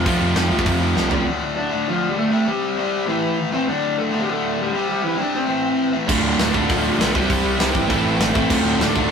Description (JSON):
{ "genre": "punk rock", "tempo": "199 BPM", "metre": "4/4", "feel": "straight", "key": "D minor", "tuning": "A4 = 441 Hz", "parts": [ { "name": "cranked stack guitar", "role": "riff", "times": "0.0-9.1 s", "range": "D2 to C4", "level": "-23 LUFS", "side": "left 3 dB", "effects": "overdrive" }, { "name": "distorted electric guitar", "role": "riff", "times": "0.0-1.3, 6.1-9.1 s", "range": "D2 to C5", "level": "-23 LUFS", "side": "right 1 dB", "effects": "distortion" }, { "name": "overdriven semi-hollow guitar", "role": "riff", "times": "0.0-1.3, 6.1-9.1 s", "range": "D2 to C5", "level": "-23 LUFS", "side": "right 5 dB", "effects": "none" }, { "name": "overdriven picked electric bass", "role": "bass", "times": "0.0-1.2, 6.1-9.0 s", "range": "D1 to D2", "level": "-26 LUFS", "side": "equal", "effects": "none" }, { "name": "tight metal drum kit", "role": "drums", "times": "0.1-1.2, 6.1-9.0 s", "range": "crash cymbal, hi-hat, kick drum, snare drum, toms", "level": "-22 LUFS", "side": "equal", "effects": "none" }, { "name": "bluesy overdriven lead guitar", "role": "melody", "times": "1.6-9.1 s", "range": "E3 to D5", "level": "-22 LUFS", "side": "equal", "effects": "distortion" } ], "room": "moderate stone room reverb, RT60 1.4 s", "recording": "rough rehearsal-room recording, warm saturation", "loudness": "-17 LUFS", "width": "side -6 dB against mid", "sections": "0.0-1.3 A section; 1.3-9.1 B section", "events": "drum fill 1.0-1.3", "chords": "0.0 F; 1.3 Dm; 2.3 C5; 3.1 Am; 3.7 D5; 4.7 C; 5.5 Am; 6.1 Dm; 7.1 C; 7.9 Am; 8.5 Dm", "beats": "| 0.06 0.36 0.66 0.96 | 1.26 1.56 1.86 2.17 | 2.47 2.77 3.07 3.37 | 3.67 3.97 4.27 4.58 | 4.88 5.18 5.48 5.78 | 6.08 6.38 6.69 6.99 | 7.29 7.59 7.89 8.19 | 8.49 8.80 9.10" }